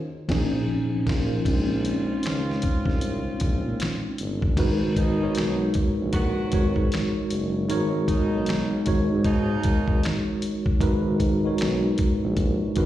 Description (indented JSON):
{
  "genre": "R&B, neo-soul",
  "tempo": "77 BPM",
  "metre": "4/4",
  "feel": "swing 63% on 16ths",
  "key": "G# minor",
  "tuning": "A4 = 439 Hz",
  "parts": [
    { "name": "mellow tine electric piano", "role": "accompaniment", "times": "0.3-12.9 s", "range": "A#2 to C#5", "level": "-25 LUFS", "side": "equal", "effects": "medium stereo tremolo, slapback echo" },
    { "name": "warm tuba", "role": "bass", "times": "0.3-12.9 s", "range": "F#1 to A#2", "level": "-27 LUFS", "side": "equal", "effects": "none" },
    { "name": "dusty soul sampler-style drum kit", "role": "drums", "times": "0.3-12.9 s", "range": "crash cymbal, finger snaps, hi-hat, kick drum, snare drum", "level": "-26 LUFS", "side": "equal", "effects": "none" },
    { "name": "mellow saxophone section", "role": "stabs", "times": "1.5-10.2 s", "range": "B2 to F#4", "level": "-33 LUFS", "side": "right 2 dB", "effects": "plate reverb, slapback echo" }
  ],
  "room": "light reverb",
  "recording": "live gig heard through the venue's PA, recital hall reverb",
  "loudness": "-21 LUFS",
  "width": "side -13 dB against mid",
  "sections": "0.0-1.5 A section; 1.5-4.6 B section; 4.6-12.9 C section",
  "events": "break 0.0-1.5; band accent 0.0-1.5; tine electric piano solo 1.5-4.6",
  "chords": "0.0 A#m11; 4.6 G#m9"
}